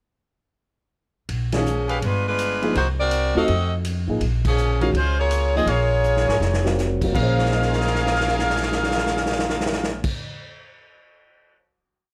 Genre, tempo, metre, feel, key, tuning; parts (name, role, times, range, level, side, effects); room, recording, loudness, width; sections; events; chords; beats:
jazz, big band swing; 164 BPM; 4/4; swing 64% on 8ths; Bb minor; A4 = 445 Hz
upright bass; bass; 1.3-10.1 s; F1 to F2; -26 LUFS; equal
swinging big-band drum kit; drums; 1.3-11.6 s; crash cymbal, hi-hat, kick drum, ride cymbal, snare drum; -30 LUFS; equal
clear saxophone section; melody; 1.5-10.1 s; F3 to F5; -26 LUFS; equal
dark upright piano; accompaniment; 1.5-10.3 s; Bb2 to Eb7; -29 LUFS; equal
bright trumpet section; stabs; 1.9-10.1 s; Gb4 to Ab5; -30 LUFS; equal
light reverb; close, detailed microphones; -21 LUFS; mono
1.3-7.1 A section; 7.1-10.1 final chord
band accent 1.5, 4.4; drum fill 6.0-6.8, 7.3-10.0
1.3 Bbm7; 2.0 G7b9; 2.8 Cm7b5; 3.5 F7b9; 4.2 Bbm7
| 1.29 1.66 2.02 2.39 | 2.76 3.12 3.49 3.85 | 4.22 4.58 4.95 5.32 | 5.68 6.05 6.41 6.78 | 7.15 7.52 7.89 8.26 | 8.62 8.99 9.37 9.74